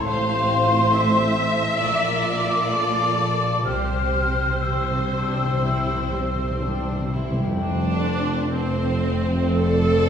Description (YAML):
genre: classical, slow romantic movement for symphony orchestra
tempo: 58-69 BPM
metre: 4/4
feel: rubato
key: F major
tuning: A4 = 439 Hz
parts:
  - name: rich chamber violin section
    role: melody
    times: 0.0-10.1 s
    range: C5 to F5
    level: -31 LUFS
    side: left 1 dB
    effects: none
  - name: mellow hollow small flute group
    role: second line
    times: 0.0-7.1 s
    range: C6 to F6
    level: -24 LUFS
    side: left 2 dB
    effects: none
  - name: rich chamber violin section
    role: second line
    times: 0.0-10.1 s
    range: C4 to D5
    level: -30 LUFS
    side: equal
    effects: none
  - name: rich studio viola section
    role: accompaniment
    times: 0.0-10.1 s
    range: C4 to E5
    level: -26 LUFS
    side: equal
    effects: none
  - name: concert harp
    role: arpeggios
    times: 0.0-10.1 s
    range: F2 to D5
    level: -31 LUFS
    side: left 3 dB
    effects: none
  - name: rich chamber cello section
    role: bass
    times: 0.1-10.1 s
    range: F2 to C3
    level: -27 LUFS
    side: right 2 dB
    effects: none
  - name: rich studio double bass section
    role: bass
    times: 0.1-10.1 s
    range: F1 to C2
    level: -28 LUFS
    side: right 2 dB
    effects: none
  - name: timpani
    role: percussion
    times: 3.7-7.6 s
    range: C3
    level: -28 LUFS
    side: left 1 dB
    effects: none
  - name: mellow French horn section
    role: sustained chords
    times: 7.6-10.1 s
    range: A3 to C4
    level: -27 LUFS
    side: left 2 dB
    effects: none
room: wet recital hall reverb, RT60 1.7 s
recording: heard from further back in the room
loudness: -19 LUFS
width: side -8 dB against mid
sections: 0.0-7.6 A section; 7.6-10.1 B section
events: timpani fill 3.7-7.6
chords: 0.1 F/A; 1.8 Bb; 3.7 C; 7.6 F